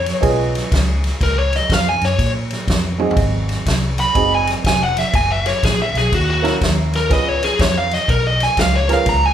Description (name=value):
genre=electric blues shuffle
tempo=122 BPM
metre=4/4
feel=swing 65% on 8ths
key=Db mixolydian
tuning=A4 = 438 Hz
part: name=biting lead guitar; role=melody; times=0.0-9.3 s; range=Gb4 to Cb6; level=-18 LUFS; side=equal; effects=overdrive
part: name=vintage muted fingered electric bass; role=bass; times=0.0-9.3 s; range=F1 to Bb2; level=-20 LUFS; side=equal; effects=none
part: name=vintage drum kit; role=drums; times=0.1-9.2 s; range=kick drum, ride cymbal, snare drum, toms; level=-20 LUFS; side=equal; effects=none
part: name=warm upright piano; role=accompaniment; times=0.2-9.1 s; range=Ab3 to Cb5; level=-21 LUFS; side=right 4 dB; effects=none
room=moderate large studio reverb, RT60 0.8 s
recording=band playing live in one room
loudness=-14 LUFS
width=side -10 dB against mid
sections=0.0-9.3 A section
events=lead electric guitar solo 0.0-9.3; drum fill 2.9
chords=0.0 Db7; 3.2 Ab7; 5.1 Gb7; 7.1 Db7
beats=0.23 0.72 | 1.21 1.70 2.19 2.68 | 3.17 3.67 4.16 4.65 | 5.14 5.63 6.12 6.61 | 7.10 7.59 8.09 8.58 | 9.07